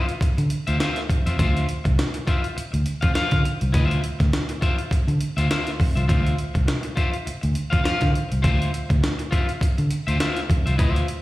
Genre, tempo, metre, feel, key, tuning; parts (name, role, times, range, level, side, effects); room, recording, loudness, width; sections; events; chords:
funk; 102 BPM; 4/4; swing 56% on 16ths; D minor; A4 = 441 Hz
electric guitar at the edge of break-up; accompaniment; 0.0-11.1 s; F4 to F5; -27 LUFS; left 3 dB; plate reverb, slapback echo
breakbeat sampler-style drum kit; drums; 0.1-11.2 s; hi-hat, kick drum, snare drum; -23 LUFS; equal
vintage muted fingered electric bass; bass; 0.2-11.0 s; C2 to D3; -22 LUFS; equal
little or no reverb; live gig heard through the venue's PA, recital hall reverb; -20 LUFS; side -17 dB against mid
0.0-11.2 A section
0.0 Dm9